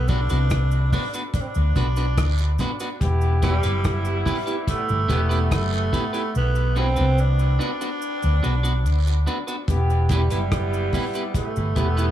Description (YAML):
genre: dub reggae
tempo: 72 BPM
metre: 4/4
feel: straight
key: E minor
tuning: A4 = 441 Hz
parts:
  - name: raspy tenor saxophone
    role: melody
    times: 0.0-12.1 s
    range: G3 to D4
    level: -28 LUFS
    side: right 2 dB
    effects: dub echo
  - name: hollow-body short-scale fingered electric bass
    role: bass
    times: 0.0-12.1 s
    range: E1 to D2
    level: -20 LUFS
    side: equal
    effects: none
  - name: electric guitar at the edge of break-up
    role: accompaniment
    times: 0.1-12.1 s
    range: B3 to B4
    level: -29 LUFS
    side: right 2 dB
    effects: dub echo
  - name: deep reggae drum kit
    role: drums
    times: 0.1-12.1 s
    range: hi-hat, kick drum, rim click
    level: -26 LUFS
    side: equal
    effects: none
  - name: cabasa and guiro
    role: percussion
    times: 0.1-12.1 s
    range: none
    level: -42 LUFS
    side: right 8 dB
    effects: dub echo
  - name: bright trombone section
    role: second line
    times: 3.0-12.1 s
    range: E3 to G4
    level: -31 LUFS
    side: left 2 dB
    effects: dub echo
room: light reverb, small room ambience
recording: echo-heavy mix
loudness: -19 LUFS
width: side -12 dB against mid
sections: 0.0-12.1 A section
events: part muted 6.3-9.7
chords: 0.0 Bm; 3.0 Em; 6.3 Bm; 9.7 Em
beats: 0.51 1.34 2.18 | 3.01 3.85 4.68 5.51 | 6.35 7.18 8.02 8.85 | 9.68 10.52 11.35